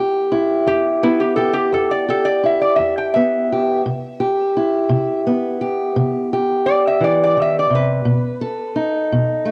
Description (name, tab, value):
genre	acoustic country blues, solo or duo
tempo	57 BPM (dotted quarters)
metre	12/8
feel	straight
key	E harmonic minor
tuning	A4 = 440 Hz
part	fingerpicked steel-string acoustic guitar	accompaniment	0.0-9.5 s	E2 to A4	-20 LUFS	equal	cassette tape
part	lap resonator guitar	melody	0.7-9.1 s	E4 to G5	-20 LUFS	equal	cassette tape
room	moderate spring reverb, RT60 2.0 s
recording	home recording on cassette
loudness	-18 LUFS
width	mono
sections	0.0-9.5 A section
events	resonator guitar played with a steel bar solo 0.0-9.5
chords	0.0 Em; 3.8 Cmaj7; 8.0 B7